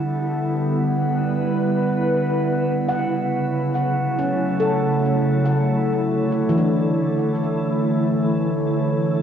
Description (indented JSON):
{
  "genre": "ambient",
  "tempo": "free time",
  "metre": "none",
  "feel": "none",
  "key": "unclear",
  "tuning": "A4 = 440 Hz",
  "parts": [
    { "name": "glassy FM pad", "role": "sustained chords", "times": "0.0-9.2 s", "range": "C#3 to B4", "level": "-20 LUFS", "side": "right 1 dB", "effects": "ensemble chorus, built-in reverb, cassette tape" },
    { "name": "handpan", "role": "arpeggios", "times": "0.0-9.2 s", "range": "E3 to F#5", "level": "-26 LUFS", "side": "left 1 dB", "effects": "cassette tape, tape echo" },
    { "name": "glass harmonica", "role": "texture", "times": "0.0-9.2 s", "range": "C#5 to F#5", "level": "-30 LUFS", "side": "equal", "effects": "cassette tape" }
  ],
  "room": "wet spring reverb, RT60 1.8 s, small room reverb",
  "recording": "home recording on cassette",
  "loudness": "-18 LUFS",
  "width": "side -8 dB against mid",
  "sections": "0.0-9.2 A section",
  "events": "fade-in on glass harmonica 0.0-9.2",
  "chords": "0.0 Em7; 2.5 F#m7; 6.0 Asus4"
}